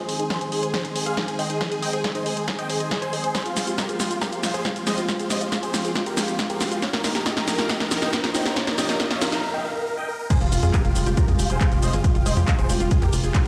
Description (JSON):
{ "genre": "uplifting trance", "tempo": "138 BPM", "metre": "4/4", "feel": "straight", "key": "F minor", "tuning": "A4 = 440 Hz", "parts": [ { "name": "big supersaw lead", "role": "melody", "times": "0.0-13.5 s", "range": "F4 to Ab5", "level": "-30 LUFS", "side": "equal", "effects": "phaser, cassette tape, sidechain pumping, digital delay" }, { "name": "analog string pad", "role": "sustained chords", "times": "0.0-13.5 s", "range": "C3 to C5", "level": "-33 LUFS", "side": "equal", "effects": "ensemble chorus, vintage 12-bit sampler grit, sidechain pumping" }, { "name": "analog pluck", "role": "arpeggios", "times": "0.1-13.5 s", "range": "Eb4 to Ab5", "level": "-35 LUFS", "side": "equal", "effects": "chorus, sidechain pumping, tape echo" }, { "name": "punchy analog drum machine", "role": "drums", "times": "0.1-13.5 s", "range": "crash cymbal, handclaps, hi-hat, shaker, snare drum", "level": "-29 LUFS", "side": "equal", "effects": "none" }, { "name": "electronic kick drum", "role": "drums", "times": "0.3-13.4 s", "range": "none", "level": "-25 LUFS", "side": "equal", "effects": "high-pass filter on kick" }, { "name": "riser and impact", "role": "sound effects", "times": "5.2-12.0 s", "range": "none", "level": "-36 LUFS", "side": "equal", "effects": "none" }, { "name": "tight sequencer bass", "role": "bass", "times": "10.4-13.5 s", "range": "F1 to F2", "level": "-25 LUFS", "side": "equal", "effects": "sidechain pumping" } ], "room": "moderate lush hall reverb, RT60 1.9 s", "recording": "played on a big sound system in a bare room, large studio reverb", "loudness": "-23 LUFS", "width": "mono", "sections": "0.0-10.3 A section; 10.3-13.5 B section", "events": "build-up 0.0-10.3; drum fill 0.0-9.4; filter sweep on synth pluck 0.0-10.3; break 9.4-10.3; drop 10.3-13.5; impact 10.3-12.0", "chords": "0.0 Ab; 3.3 Fmadd9; 6.8 Ebadd9; 10.3 Fmadd9" }